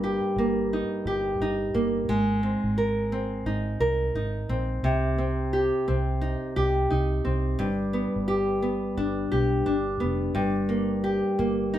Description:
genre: acoustic pop.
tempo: 87 BPM.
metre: 4/4.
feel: swing 60% on 16ths.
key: C minor.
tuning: A4 = 440 Hz.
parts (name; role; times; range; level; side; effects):
nylon-string guitar; accompaniment; 0.0-11.8 s; G2 to Bb4; -25 LUFS; equal; none.
vintage muted fingered electric bass; bass; 0.0-11.8 s; F1 to C2; -30 LUFS; equal; none.
room: wet studio reverb, RT60 0.8 s.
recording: band playing live in one room.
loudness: -24 LUFS.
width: side -12 dB against mid.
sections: 0.0-11.8 A section.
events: none.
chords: 0.0 Eb/G; 2.1 Abadd9; 4.8 Cm; 7.6 G; 10.4 Eb/G (rootless).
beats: 0.02 0.71 1.40 | 2.08 2.77 3.46 4.15 | 4.84 5.53 6.22 6.91 | 7.60 8.29 8.98 9.67 | 10.36 11.05 11.74.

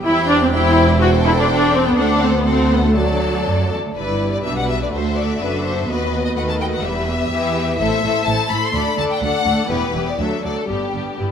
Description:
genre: quick classical-period movement for string orchestra.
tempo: 124 BPM.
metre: 2/4.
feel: straight.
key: unclear.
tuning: A4 = 440 Hz.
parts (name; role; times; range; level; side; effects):
rich studio violin section; melody; 0.0-11.2 s; G4 to C6; -23 LUFS; left 5 dB; none.
warm studio cello section; bass; 0.0-11.3 s; D2 to E3; -23 LUFS; right 2 dB; none.
warm studio double bass section; bass; 0.0-11.3 s; E1 to E2; -24 LUFS; right 3 dB; none.
rich studio violin section; second line; 0.1-11.3 s; D4 to E5; -23 LUFS; left 3 dB; none.
warm studio viola section; accompaniment; 0.1-11.3 s; E3 to G4; -20 LUFS; equal; none.
room: moderate scoring stage reverb, RT60 2.0 s.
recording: none.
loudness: -15 LUFS.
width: side -8 dB against mid.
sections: 0.0-4.0 A section; 4.0-11.3 B section.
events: none.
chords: 0.1 C/E; 1.0 Am7/E; 2.0 D7; 3.0 D; 4.0 G; 4.9 D; 5.9 B7/D#; 6.8 Em; 7.8 Am; 8.8 D; 9.7 Em; 10.2 D; 10.7 G.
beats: | 0.06 0.53 | 1.02 1.50 | 1.98 2.47 | 2.96 3.46 | 3.95 4.44 | 4.92 5.41 | 5.89 6.37 | 6.85 7.32 | 7.80 8.28 | 8.75 9.23 | 9.71 10.19 | 10.69 11.19.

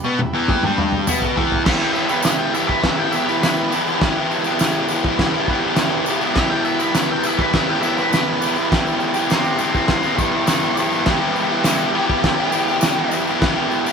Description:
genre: garage rock duo or trio.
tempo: 102 BPM.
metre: 4/4.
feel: straight.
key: E minor.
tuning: A4 = 441 Hz.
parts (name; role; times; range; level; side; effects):
combo organ; sustained chords; 0.0-13.9 s; G4 to G5; -31 LUFS; right 1 dB; none.
overdriven electric guitar; riff; 0.0-13.9 s; E2 to G4; -18 LUFS; equal; none.
cloth-damped thuddy drum kit; drums; 0.2-13.6 s; crash cymbal, kick drum, snare drum, toms; -21 LUFS; equal; none.
tambourine; percussion; 1.1-13.9 s; none; -34 LUFS; right 5 dB; none.
octave-fuzz lead guitar; melody; 1.7-13.1 s; D4 to G5; -23 LUFS; left 1 dB; distortion.
room: moderate studio reverb, RT60 0.5 s.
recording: band playing live in one room.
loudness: -16 LUFS.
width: side -6 dB against mid.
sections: 0.0-1.7 A section; 1.7-13.9 B section.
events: drum fill 0.0-1.7; lead electric guitar solo 1.7-13.9.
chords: 0.0 Em.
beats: 0.49 1.08 | 1.67 2.25 2.84 3.43 | 4.01 4.60 5.19 5.78 | 6.37 6.96 7.54 8.13 | 8.72 9.31 9.90 10.49 | 11.07 11.66 12.25 12.84 | 13.43.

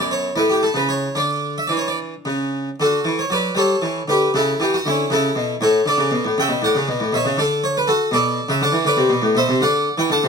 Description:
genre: classical, baroque-style suite movement for harpsichord.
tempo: 72-81 BPM (dotted quarters).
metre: 6/8.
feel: rubato.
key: D major.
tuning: A4 = 437 Hz.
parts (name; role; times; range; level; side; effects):
harpsichord; solo; 0.0-10.3 s; F#2 to A5; -16 LUFS; equal; none.
room: light reverb.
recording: minimal, uncompressed stereo recording.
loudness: -16 LUFS.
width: side -5 dB against mid.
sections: 0.0-2.8 A section; 2.8-10.3 B section.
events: none.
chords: 0.3 A; 1.1 Dsus2; 2.8 D; 3.6 Em7; 4.3 A/C#; 6.6 A; 7.4 D; 8.9 Bm; 9.6 D.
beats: 0.34 | 1.14 1.96 | 2.78 3.56 | 4.33 5.10 | 5.86 6.61 | 7.37 8.12 | 8.86 9.60.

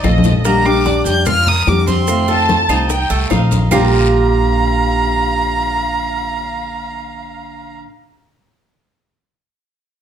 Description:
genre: latin, Cuban son and guajira.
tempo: 147 BPM.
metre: 4/4.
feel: straight.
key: Bb major.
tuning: A4 = 440 Hz.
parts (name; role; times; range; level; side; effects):
dark studio violin section; second line; 0.0-7.7 s; Eb5 to A5; -22 LUFS; right 1 dB; none.
nylon-string guitar; accompaniment; 0.0-7.9 s; Bb2 to G4; -21 LUFS; left 2 dB; none.
Cuban tres; arpeggios; 0.0-7.8 s; A3 to Bb4; -20 LUFS; right 6 dB; none.
upright bass; bass; 0.0-7.8 s; Bb1 to F2; -18 LUFS; equal; none.
bongos; percussion; 0.0-3.8 s; none; -25 LUFS; left 7 dB; none.
claves; percussion; 0.0-3.8 s; none; -27 LUFS; right 3 dB; none.
congas; percussion; 0.0-3.8 s; none; -20 LUFS; left 2 dB; none.
guiro; percussion; 0.0-3.8 s; none; -30 LUFS; left 6 dB; none.
maracas; percussion; 0.0-3.8 s; none; -30 LUFS; right 7 dB; none.
warm violin; melody; 0.5-7.7 s; Bb5 to G6; -19 LUFS; right 1 dB; plate reverb.
room: moderate large studio reverb, RT60 0.9 s.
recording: none.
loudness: -12 LUFS.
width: side -9 dB against mid.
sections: 0.4-3.7 A section; 3.7-7.0 B section.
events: drum fill 0.0-0.4.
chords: 0.4 Bb6; 2.1 F7; 3.7 Bb6.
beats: 0.04 | 0.45 0.85 1.26 1.67 | 2.08 2.49 2.90 3.31 | 3.72 4.12 4.53 4.94 | 5.35 5.76 6.17 6.58.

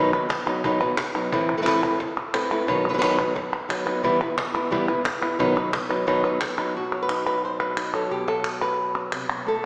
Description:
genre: flamenco.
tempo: 177 BPM.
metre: 4/4.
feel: straight.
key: B phrygian dominant.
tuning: A4 = 441 Hz.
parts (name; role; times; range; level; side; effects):
flamenco guitar; melody; 0.0-9.7 s; A2 to C5; -25 LUFS; equal; none.
palmas hand claps; percussion; 0.1-9.5 s; none; -31 LUFS; equal; none.
cajon; percussion; 0.3-6.6 s; none; -36 LUFS; equal; none.
room: wet scoring stage reverb, RT60 1.9 s.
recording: recorded in a church or concert hall, small speaker sound.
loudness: -24 LUFS.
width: mono.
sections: 0.0-6.8 A section; 6.8-9.7 B section.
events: none.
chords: 0.0 B; 1.3 Amadd9; 2.7 B; 4.0 Em; 5.4 B.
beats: 0.30 0.64 0.98 | 1.32 1.67 2.00 2.34 | 2.68 3.02 3.36 3.70 | 4.04 4.38 4.72 5.06 | 5.40 5.73 6.07 6.41 | 6.75 7.09 7.43 7.77 | 8.11 8.45 8.79 9.12 | 9.46.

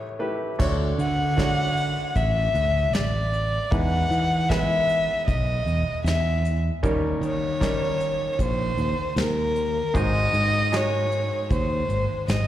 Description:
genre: acoustic folk-pop ballad.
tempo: 77 BPM.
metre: 4/4.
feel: straight.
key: unclear.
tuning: A4 = 436 Hz.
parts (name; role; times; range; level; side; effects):
bright upright piano; accompaniment; 0.0-12.5 s; G#1 to D#5; -30 LUFS; equal; slapback echo.
fretless electric bass; bass; 0.6-12.5 s; G#1 to E3; -25 LUFS; equal; none.
soft brush drum kit; drums; 0.6-12.5 s; crash cymbal, hi-hat, kick drum, snare drum; -26 LUFS; equal; none.
dark violin; melody; 1.0-12.5 s; A#4 to F#5; -25 LUFS; left 1 dB; slapback echo.
room: studio ambience.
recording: live gig heard through the venue's PA, recital hall reverb.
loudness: -21 LUFS.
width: side -12 dB against mid.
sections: 0.6-12.5 A section.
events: none.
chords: 0.0 A7; 0.6 Dmaj7; 3.7 Emaj7; 6.8 D#7; 9.9 G#7.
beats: | 0.60 1.38 2.16 2.94 | 3.72 4.50 5.28 6.05 | 6.83 7.61 8.39 9.17 | 9.95 10.72 11.50 12.28.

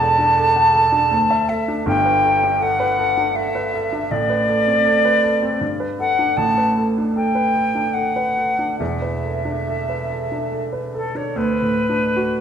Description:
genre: classical, impressionist duo for flute and grand piano.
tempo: 68-82 BPM.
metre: 3/4.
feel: rubato.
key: unclear.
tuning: A4 = 445 Hz.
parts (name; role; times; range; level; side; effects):
silver concert flute; melody; 0.0-12.4 s; A4 to A5; -18 LUFS; equal; none.
warm baby grand piano; accompaniment; 0.0-12.4 s; E1 to F#5; -21 LUFS; right 1 dB; none.
room: wet scoring stage reverb, RT60 1.5 s.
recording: none.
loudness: -16 LUFS.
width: side -8 dB against mid.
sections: 0.0-11.4 A section; 11.4-12.4 B section.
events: none.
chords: 0.0 E9sus4; 1.1 Dsus2; 1.9 Gmaj9; 4.1 Amadd9; 5.6 Gadd9; 6.4 A9sus4; 8.8 E7sus4; 11.4 D.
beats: 0.37 1.11 | 1.86 2.61 3.36 | 4.11 4.86 5.62 | 6.37 7.15 7.95 | 8.80 9.67 10.52 | 11.35 12.16.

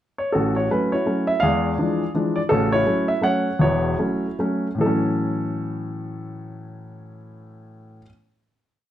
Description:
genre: jazz.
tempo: 142-168 BPM.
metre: 3/4.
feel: swing 63% on 8ths.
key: A major.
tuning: A4 = 440 Hz.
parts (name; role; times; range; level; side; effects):
warm grand piano; solo; 0.2-8.1 s; E1 to F#5; -20 LUFS; equal; none.
room: moderate large studio reverb, RT60 0.8 s.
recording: none.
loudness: -19 LUFS.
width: side -12 dB against mid.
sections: 0.0-0.3 pickup bar; 0.3-4.8 A section; 4.8-7.3 final chord.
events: slowing down 2.5-4.8.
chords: 0.3 A6; 1.4 E7b9; 2.5 A6.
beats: | 0.34 0.70 1.06 | 1.42 1.78 2.14 | 2.50 2.86 3.23 | 3.60 3.98 4.38 | 4.80 5.22 5.64 | 6.07 6.49 6.92.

